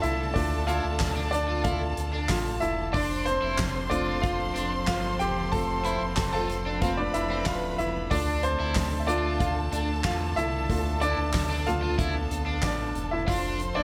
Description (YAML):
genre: piano-driven pop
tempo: 93 BPM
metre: 4/4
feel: straight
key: unclear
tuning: A4 = 444 Hz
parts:
  - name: rich studio violin section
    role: second line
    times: 0.0-13.8 s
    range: A4 to C6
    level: -37 LUFS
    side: equal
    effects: digital delay
  - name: warm grand piano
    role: accompaniment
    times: 0.0-13.8 s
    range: A3 to B5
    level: -31 LUFS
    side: equal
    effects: none
  - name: rich studio string section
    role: sustained chords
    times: 0.0-13.8 s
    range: D3 to A4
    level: -40 LUFS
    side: equal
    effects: none
  - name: sub bass with octave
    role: bass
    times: 0.0-13.8 s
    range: D1 to E2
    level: -34 LUFS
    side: equal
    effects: none
  - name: soft-mallet drum kit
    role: drums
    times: 0.0-13.8 s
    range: handclaps, hi-hat, kick drum, snare drum, toms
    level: -34 LUFS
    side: equal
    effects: none
  - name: overdriven electric guitar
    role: riff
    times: 0.7-13.8 s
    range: C4 to F4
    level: -36 LUFS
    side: equal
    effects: none
  - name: group handclap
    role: percussion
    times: 1.0-12.8 s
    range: none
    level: barely audible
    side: none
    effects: none
room: light reverb, studio ambience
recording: none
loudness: -27 LUFS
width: mono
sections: 0.0-13.8 A section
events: grand piano solo 0.0-13.8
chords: 0.0 Dm; 2.9 F; 8.1 Dm; 13.3 F